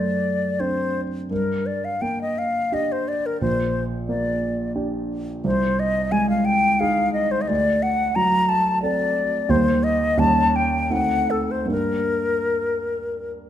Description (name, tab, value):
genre	classical, romantic duo for flute and grand piano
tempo	70-91 BPM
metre	3/4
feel	rubato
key	G minor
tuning	A4 = 440 Hz
part	mellow hollow silver concert flute	melody	0.0-13.3 s	A4 to Bb5	-22 LUFS	left 2 dB	none
part	dark concert grand piano	accompaniment	0.0-13.5 s	Bb1 to A4	-23 LUFS	right 1 dB	none
room	wet recital hall reverb, RT60 1.5 s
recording	none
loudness	-19 LUFS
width	side -11 dB against mid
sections	0.0-13.5 A section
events	none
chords	0.0 D7/F#; 1.3 Gm; 3.4 Gm/Bb; 5.4 Ab/C; 7.5 D7; 9.5 Eb6; 10.2 Eb7; 10.9 D7b9; 11.7 Gm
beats	0.59 | 1.30 2.02 2.72 | 3.41 4.08 4.76 | 5.45 6.12 6.81 | 7.49 8.17 8.83 | 9.49 10.18 10.90 | 11.70 12.55 13.36